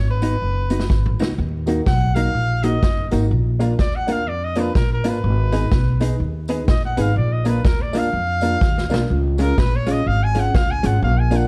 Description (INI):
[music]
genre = ska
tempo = 124 BPM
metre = 4/4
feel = swing 61% on 8ths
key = unclear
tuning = A4 = 443 Hz
[part]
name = clear trumpet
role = melody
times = 0.0-11.5 s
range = Bb4 to Ab5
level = -27 LUFS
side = equal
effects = none
[part]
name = upright bass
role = bass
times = 0.0-11.4 s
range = F#1 to F2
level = -23 LUFS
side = equal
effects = none
[part]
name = vintage hollow-body jazz guitar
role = accompaniment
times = 0.2-11.4 s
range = Ab3 to Ab4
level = -27 LUFS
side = equal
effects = none
[part]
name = street-band drum kit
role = drums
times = 0.2-11.4 s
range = hi-hat, kick drum, snare drum, toms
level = -23 LUFS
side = equal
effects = none
[part]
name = tambourine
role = percussion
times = 0.2-11.4 s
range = none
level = -47 LUFS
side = equal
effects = none
[part]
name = dark upright piano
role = stabs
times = 1.7-11.5 s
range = Db4 to Cb5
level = -30 LUFS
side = equal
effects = none
[sound]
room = small room ambience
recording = dark, warm production, vinyl crackle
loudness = -19 LUFS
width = mono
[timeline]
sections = 0.0-11.5 A section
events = trumpet solo 0.0-11.5; drum fill 0.9-1.4, 8.6-9.1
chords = 0.0 B; 1.4 Ebm; 3.3 Bb; 5.2 Abm; 7.2 Bb; 9.1 Db